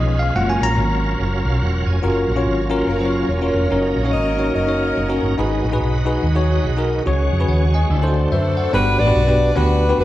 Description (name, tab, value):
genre	gospel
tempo	143 BPM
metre	4/4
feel	swing 60% on 8ths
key	F# major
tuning	A4 = 440 Hz
part	bell-like tine electric piano	accompaniment	0.0-10.0 s	G2 to A#5	-20 LUFS	left 2 dB	fast stereo tremolo
part	bright tonewheel organ	sustained chords	0.0-8.7 s	F#3 to G#5	-26 LUFS	right 3 dB	slow rotary speaker, chorus vibrato
part	hollow-body short-scale fingered electric bass	bass	0.0-10.0 s	E1 to F#2	-19 LUFS	equal	none
part	mellow French horn section	sustained chords	2.0-8.7 s	F#3 to F#4	-31 LUFS	right 1 dB	none
part	warm saxophone section	melody	2.9-5.4, 8.3-10.0 s	C#4 to D#5	-20 LUFS	left 1 dB	none
room	moderate recital hall reverb, RT60 1.5 s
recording	recorded in a church or concert hall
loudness	-16 LUFS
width	side -14 dB against mid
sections	0.0-2.0 A section; 2.0-8.7 B section; 8.7-10.0 C section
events	tine electric piano solo 0.0-2.0; tonewheel organ fill 1.2-2.0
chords	0.4 F#maj7; 3.7 D#m7/F#; 5.4 G#m7; 7.1 C#sus4; 7.9 D7; 8.7 Gmaj7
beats	| 0.36 0.78 1.20 1.61 | 2.03 2.45 2.87 3.29 | 3.71 4.13 4.55 4.97 | 5.39 5.81 6.23 6.65 | 7.07 7.48 7.90 8.32 | 8.73 9.15 9.57 9.98